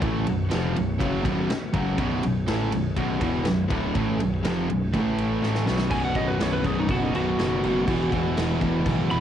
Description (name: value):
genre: hard rock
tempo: 122 BPM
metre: 4/4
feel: straight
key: unclear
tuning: A4 = 440 Hz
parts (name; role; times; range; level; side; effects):
- overdriven tonewheel organ; sustained chords; 0.0-9.2 s; E3 to C#5; -39 LUFS; equal; none
- crunchy overdriven guitar; riff; 0.0-9.2 s; B1 to A3; -29 LUFS; equal; cassette tape
- high-gain distorted guitar; riff; 0.0-9.2 s; B1 to A3; -29 LUFS; left 8 dB; distortion, cassette tape
- overdriven electric guitar; riff; 0.0-9.2 s; B1 to A3; -28 LUFS; right 7 dB; cassette tape
- growling picked electric bass; bass; 0.0-9.2 s; B0 to A1; -30 LUFS; equal; overdrive
- big rock drum kit; drums; 0.0-9.2 s; crash cymbal, kick drum, ride cymbal, snare drum; -29 LUFS; equal; cassette tape
- lightly driven lead guitar; melody; 5.9-9.2 s; D#4 to B5; -28 LUFS; right 1 dB; cassette tape
room: light reverb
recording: home recording on cassette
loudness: -22 LUFS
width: side -10 dB against mid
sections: 0.0-5.9 A section; 5.9-9.2 B section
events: drum fill 5.4-5.9; lead electric guitar solo 5.9-9.2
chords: 0.0 B5; 4.9 A5; 5.4 B5; 7.9 E5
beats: | 0.03 0.52 1.01 1.50 | 1.99 2.48 2.98 3.47 | 3.96 4.45 4.94 5.43 | 5.92 6.42 6.91 7.40 | 7.89 8.38 8.87